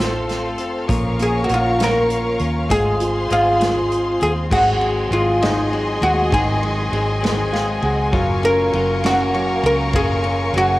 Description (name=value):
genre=six-eight pop ballad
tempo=66 BPM (dotted quarters)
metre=6/8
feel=straight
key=unclear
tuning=A4 = 440 Hz
part: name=warm baby grand piano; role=accompaniment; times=0.0-10.8 s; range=Db3 to Gb5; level=-25 LUFS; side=right 1 dB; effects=cassette tape
part: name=rich studio string section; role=sustained chords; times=0.0-10.8 s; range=Ab4 to Db6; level=-24 LUFS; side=left 1 dB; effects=cassette tape
part: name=direct-recorded clean electric guitar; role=arpeggios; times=0.0-10.8 s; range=Ab2 to Bb4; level=-27 LUFS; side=left 4 dB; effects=cassette tape
part: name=vintage muted fingered electric bass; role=bass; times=0.0-10.8 s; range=F1 to Eb2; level=-23 LUFS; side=equal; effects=none
part: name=unplugged drum kit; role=drums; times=0.0-10.7 s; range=crash cymbal, hi-hat, kick drum, ride cymbal, snare drum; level=-25 LUFS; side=equal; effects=cassette tape
part: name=oud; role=melody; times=1.2-10.8 s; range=Eb4 to Bb4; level=-19 LUFS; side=equal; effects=none
room=light reverb, small room ambience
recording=home recording on cassette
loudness=-16 LUFS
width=side -17 dB against mid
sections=0.0-4.5 A section; 4.5-10.8 B section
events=grand piano fill 7.2-8.1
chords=0.0 F/A; 0.9 Bbm; 2.7 Fm/Ab; 4.5 Ab7; 8.1 Gbmaj7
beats=| 0.89 1.80 | 2.70 3.61 | 4.51 5.42 | 6.32 7.23 | 8.13 9.04 | 9.95